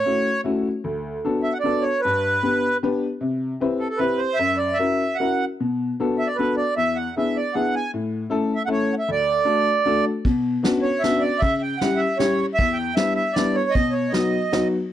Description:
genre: musette waltz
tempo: 153 BPM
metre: 3/4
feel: swing 53% on 8ths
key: D major, B minor from 10.3 s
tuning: A4 = 439 Hz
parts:
  - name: accordion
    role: melody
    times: 0.0-14.7 s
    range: A4 to G#5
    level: -22 LUFS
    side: right 3 dB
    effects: none
  - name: clear upright piano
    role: accompaniment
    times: 0.0-14.7 s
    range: D2 to B4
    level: -23 LUFS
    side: left 3 dB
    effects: none
  - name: vintage brush drum kit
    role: drums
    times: 10.2-14.6 s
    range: kick drum, ride cymbal, snare drum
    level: -25 LUFS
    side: right 1 dB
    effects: none
room: small room ambience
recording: dry, close 1970s-style studio recording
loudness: -19 LUFS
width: side -11 dB against mid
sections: 0.0-10.3 A section; 10.3-14.9 B section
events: none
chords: 0.0 A6; 0.9 D6; 2.0 G; 3.2 Cmaj7; 4.4 F#7; 5.6 Bm7; 6.8 E7; 7.9 A; 9.1 D; 10.3 Bmadd9; 11.4 C#dim; 12.6 Em7; 13.7 B

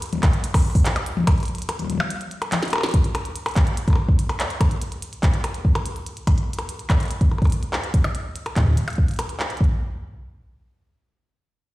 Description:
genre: IDM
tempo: 144 BPM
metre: 4/4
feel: straight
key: none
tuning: none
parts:
  - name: glitchy drum kit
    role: drums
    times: 0.0-9.7 s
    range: handclaps, hi-hat, percussion blips, snare drum, toms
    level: -26 LUFS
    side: left 1 dB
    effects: digital delay
  - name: electronic kick drum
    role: drums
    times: 0.2-9.7 s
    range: none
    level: -18 LUFS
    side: equal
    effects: none
room: light reverb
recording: played on a big sound system in a bare room, large studio reverb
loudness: -19 LUFS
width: side -18 dB against mid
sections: 0.0-2.9 A section; 2.9-9.6 B section; 9.6-11.7 C section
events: kick drops out 2.1-2.9; drum fill 2.5-2.9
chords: none

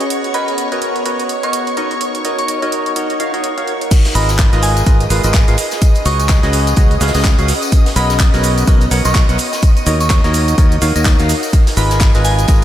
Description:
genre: piano house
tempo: 126 BPM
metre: 4/4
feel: swing 59% on 16ths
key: G# dorian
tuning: A4 = 440 Hz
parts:
  - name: string machine, violins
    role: sustained chords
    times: 0.0-12.6 s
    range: C#5 to G#6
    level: -25 LUFS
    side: equal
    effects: ensemble chorus, sidechain pumping
  - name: percussive organ stab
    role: riff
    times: 0.0-12.6 s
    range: D#4 to F#5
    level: -20 LUFS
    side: equal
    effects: wide subtle chorus, sidechain pumping, analog delay
  - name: house drum kit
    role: drums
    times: 0.0-12.6 s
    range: crash cymbal, handclaps, hi-hat, ride cymbal, shaker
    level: -22 LUFS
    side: right 2 dB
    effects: none
  - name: airy breathy pad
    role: texture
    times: 0.0-12.6 s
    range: B3 to B5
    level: -25 LUFS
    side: equal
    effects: chorus, sidechain pumping
  - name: soft synth bell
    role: melody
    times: 0.3-12.4 s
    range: G#5 to C#6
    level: -24 LUFS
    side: right 1 dB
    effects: chorus, phaser, analog delay
  - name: electronic kick drum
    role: drums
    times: 3.9-12.6 s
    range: none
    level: -11 LUFS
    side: equal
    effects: none
  - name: tight metal drum kit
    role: drums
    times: 3.9-12.6 s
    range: hi-hat, snare drum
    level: -30 LUFS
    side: right 2 dB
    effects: none
  - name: tambourine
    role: percussion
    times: 3.9-12.6 s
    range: none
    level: -29 LUFS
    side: left 6 dB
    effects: none
  - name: modern bright fingered electric bass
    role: bass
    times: 4.2-12.6 s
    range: G#1 to D#2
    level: -15 LUFS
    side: equal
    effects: sidechain pumping
room: moderate cathedral reverb, RT60 5.7 s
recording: dreamy mix soaked in reverb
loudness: -11 LUFS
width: side -12 dB against mid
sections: 0.0-3.9 A section; 3.9-12.6 B section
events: drop 3.9-12.6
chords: 0.1 Bmaj9; 1.8 D#m7; 3.9 G#m69; 5.6 C#9sus4; 7.7 Bmaj9; 9.4 D#m7; 11.5 G#m69

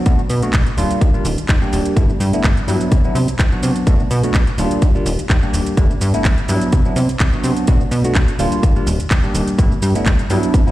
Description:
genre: filtered disco house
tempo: 126 BPM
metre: 4/4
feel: swing 54% on 16ths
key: G major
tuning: A4 = 436 Hz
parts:
  - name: bell-like tine electric piano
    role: accompaniment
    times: 0.0-10.7 s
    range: F#3 to G4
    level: -20 LUFS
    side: equal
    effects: phaser, sidechain pumping, low-pass filter
  - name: plucky analog bass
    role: bass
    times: 0.1-10.7 s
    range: Eb1 to C3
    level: -19 LUFS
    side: equal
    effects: sidechain pumping, low-pass filter
  - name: electronic kick drum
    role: drums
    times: 0.1-10.6 s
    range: none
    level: -14 LUFS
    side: equal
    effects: none
  - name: house drum kit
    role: drums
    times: 0.1-10.7 s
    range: handclaps, hi-hat, shaker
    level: -25 LUFS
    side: right 1 dB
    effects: sidechain pumping on hats, sidechain pumping on cymbals, sidechain pumping on perc
room: digital ambience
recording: played on a big sound system in a bare room, large studio reverb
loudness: -14 LUFS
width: side -15 dB against mid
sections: 0.0-10.7 A section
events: none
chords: 0.1 Bm7; 0.8 Ebmaj9; 2.0 G69; 2.9 Cmaj9#11; 3.9 Bm7; 4.6 Ebmaj9; 5.8 G69; 6.7 Cmaj9#11; 7.7 Bm7; 8.4 Ebmaj9; 9.6 G69

